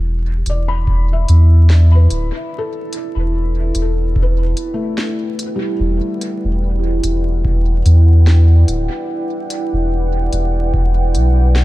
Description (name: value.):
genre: ambient dub.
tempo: 73 BPM.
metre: 4/4.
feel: swing 56% on 16ths.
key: E minor.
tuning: A4 = 440 Hz.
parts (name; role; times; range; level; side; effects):
deep dark ambient pad; sustained chords; 0.0-11.6 s; E4 to G5; -23 LUFS; right 2 dB; chorus, built-in reverb.
soft dub sub bass; bass; 0.0-11.6 s; D1 to E2; -12 LUFS; equal; none.
felt-muted upright piano; arpeggios; 0.5-11.6 s; G3 to B5; -27 LUFS; left 3 dB; low-pass filter, tape echo.
organic electronic drum kit; drums; 0.5-11.6 s; hi-hat, snare drum; -26 LUFS; equal; dub echo.
electronic kick drum; drums; 0.9-10.9 s; none; -19 LUFS; equal; overdrive.
room: digital ambience.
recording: vinyl crackle.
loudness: -13 LUFS.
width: side -17 dB against mid.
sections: 0.0-11.6 A section.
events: filter sweep on felt piano 0.0-11.6.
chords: 0.0 Em7.